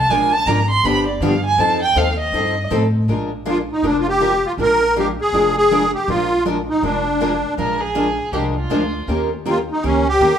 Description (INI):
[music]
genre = acoustic string swing (jazz manouche)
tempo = 160 BPM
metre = 4/4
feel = swing 60% on 8ths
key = Bb mixolydian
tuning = A4 = 440 Hz
[part]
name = warm violin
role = second line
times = 0.0-2.7, 7.6-9.3 s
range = F4 to C6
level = -19 LUFS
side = right 2 dB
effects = none
[part]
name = upright bass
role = bass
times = 0.0-10.4 s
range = F1 to A2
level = -24 LUFS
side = equal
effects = none
[part]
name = picked acoustic archtop guitar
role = accompaniment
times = 0.1-10.3 s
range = D3 to Bb4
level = -24 LUFS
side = left 4 dB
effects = none
[part]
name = picked steel-string acoustic guitar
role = accompaniment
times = 0.1-10.3 s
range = D3 to Bb4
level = -24 LUFS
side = right 2 dB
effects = none
[part]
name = musette accordion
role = melody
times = 3.5-10.4 s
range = Db4 to Bb4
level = -16 LUFS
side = equal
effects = none
[sound]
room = moderate large studio reverb, RT60 1.1 s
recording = band playing live in one room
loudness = -15 LUFS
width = side -8 dB against mid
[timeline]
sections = 0.0-3.1 A section; 3.1-10.4 B section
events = violin solo 0.0-3.1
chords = 0.1 Bb7; 0.8 G7; 1.6 F7; 3.1 Bb7; 9.1 Eb7